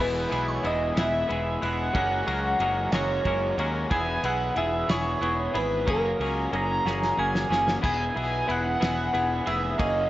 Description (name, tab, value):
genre	indie rock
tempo	61 BPM (dotted quarters)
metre	6/8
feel	straight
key	E lydian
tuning	A4 = 440 Hz
part	overdriven synth lead	melody	0.0-10.1 s	A#4 to A#5	-27 LUFS	right 1 dB	distortion, chorus, phaser, plate reverb, tape echo
part	glassy synth bell	second line	0.0-10.1 s	A#5 to A#6	-39 LUFS	right 2 dB	chorus, tremolo
part	twangy electric guitar	riff	0.0-10.1 s	E3 to A#4	-30 LUFS	left 3 dB	none
part	twangy electric guitar	riff	0.0-10.1 s	E3 to G#4	-33 LUFS	right 3 dB	wide subtle chorus, tape echo
part	fuzz picked electric bass	bass	0.0-10.1 s	E1 to D#2	-31 LUFS	equal	overdrive
part	loose indie drum kit	drums	0.3-9.9 s	crash cymbal, kick drum, ride cymbal, snare drum	-32 LUFS	equal	none
room	moderate studio reverb, RT60 0.8 s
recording	worn, warbling old tape, cassette tape, warbly pitch drift, nothing above 7.7 kHz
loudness	-23 LUFS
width	side -15 dB against mid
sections	0.0-10.1 A section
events	drum fill 6.9-7.8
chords	0.0 E; 1.9 F#add9; 3.9 E; 5.9 F#add9; 7.8 E